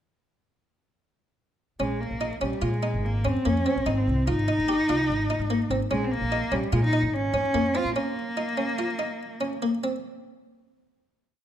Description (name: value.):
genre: contemporary instrumental, chamber music in an uneven meter.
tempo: 146 BPM.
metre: 5/4.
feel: straight.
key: Bb dorian.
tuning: A4 = 439 Hz.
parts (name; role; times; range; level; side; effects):
rich cello; melody; 1.8-9.6 s; G3 to F4; -27 LUFS; equal; none.
buff-stop harpsichord; arpeggios; 1.8-10.0 s; Bb3 to G4; -28 LUFS; equal; none.
upright bass; bass; 1.8-7.9 s; G1 to Bb2; -27 LUFS; equal; none.
room: light reverb.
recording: minimal, uncompressed stereo recording.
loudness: -23 LUFS.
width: side -10 dB against mid.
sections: 1.8-10.1 A section.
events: slowing down 6.7-10.1.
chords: 1.8 Bbm7; 3.9 Abmaj7; 5.9 Bbm7; 8.0 Bbm.